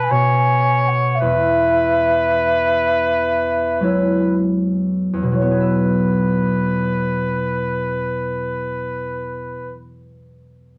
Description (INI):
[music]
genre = celtic folk, Celtic slow air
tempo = 37-56 BPM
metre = 3/4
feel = rubato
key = E major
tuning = A4 = 441 Hz
[part]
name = mellow baroque flute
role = melody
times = 0.0-3.8 s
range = E5 to G#5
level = -20 LUFS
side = equal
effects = none
[part]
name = clear trumpet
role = second line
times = 0.0-9.8 s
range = B4 to C#5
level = -24 LUFS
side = equal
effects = none
[part]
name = concert harp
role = accompaniment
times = 0.0-10.0 s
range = E2 to E5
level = -22 LUFS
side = equal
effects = none
[sound]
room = wet small room reverb, RT60 0.6 s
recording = none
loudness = -18 LUFS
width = mono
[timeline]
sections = 0.0-5.4 A section; 5.4-10.0 B section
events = slowing down 0.0-5.4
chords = 0.0 N.C.; 1.2 Eadd9